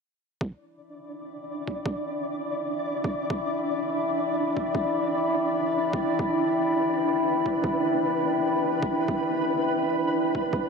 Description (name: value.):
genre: half-time drum and bass.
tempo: 166 BPM.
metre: 4/4.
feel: swing 57% on 16ths, half-time.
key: E minor.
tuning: A4 = 440 Hz.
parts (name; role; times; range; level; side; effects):
dark analog pad; sustained chords; 0.4-10.7 s; E4 to B5; -26 LUFS; left 1 dB; chorus, vintage 12-bit sampler grit, sidechain pumping.
electronic kick drum; drums; 0.4-10.6 s; none; -30 LUFS; right 1 dB; overdrive, high-pass filter on kick.
flickering grainy texture; texture; 0.9-10.7 s; D4 to D5; -28 LUFS; right 1 dB; built-in reverb.
room: wet lush hall reverb, RT60 2.0 s, digital ambience.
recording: none.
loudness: -24 LUFS.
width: side -5 dB against mid.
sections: 0.4-10.7 A section.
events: none.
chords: 0.4 Em.